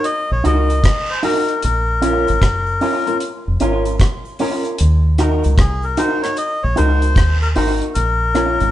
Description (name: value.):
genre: roots reggae.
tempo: 76 BPM.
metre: 4/4.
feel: swing 64% on 16ths.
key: Eb dorian.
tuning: A4 = 435 Hz.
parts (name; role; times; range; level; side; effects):
melodica; melody; 0.0-8.7 s; Ab4 to Eb5; -20 LUFS; left 3 dB; none.
warm upright piano; stabs; 0.0-8.6 s; Db4 to Bb4; -22 LUFS; left 2 dB; none.
deep reggae drum kit; drums; 0.0-8.7 s; hi-hat, kick drum, rim click; -18 LUFS; equal; none.
cabasa and guiro; percussion; 0.0-8.7 s; none; -34 LUFS; right 3 dB; slapback echo.
deep dub fingered electric bass; bass; 0.3-8.7 s; F1 to Eb2; -17 LUFS; equal; none.
electric guitar with an envelope filter; accompaniment; 0.4-8.6 s; Db4 to Bb4; -23 LUFS; right 3 dB; spring reverb, slapback echo.
room: light reverb.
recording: band playing live in one room, nothing above 10.4 kHz.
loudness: -14 LUFS.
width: side -13 dB against mid.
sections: 0.0-8.7 A section.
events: none.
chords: 0.0 Ebm; 1.6 Bbm; 4.8 Ebm; 8.0 Bbm.